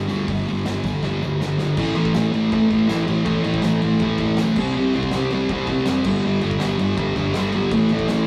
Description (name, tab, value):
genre	garage rock duo or trio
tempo	161 BPM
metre	4/4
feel	straight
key	A minor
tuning	A4 = 439 Hz
part	thick fuzz guitar	riff	0.0-8.3 s	G2 to C4	-21 LUFS	equal	distortion
part	fuzz fingered electric bass	bass	0.0-8.2 s	F1 to D2	-32 LUFS	equal	overdrive
part	oversized low-tuned drum kit	drums	0.1-8.2 s	crash cymbal, hi-hat, kick drum, ride cymbal, snare drum	-32 LUFS	equal	none
part	tambourine	percussion	0.1-8.2 s	none	-50 LUFS	equal	none
room	wet small room reverb, RT60 0.5 s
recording	rough rehearsal-room recording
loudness	-20 LUFS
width	mono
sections	0.0-1.8 A section; 1.8-8.3 B section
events	drum fill 1.0-1.8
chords	0.0 G5; 1.8 A5; 4.6 C5; 6.0 G5; 7.7 A5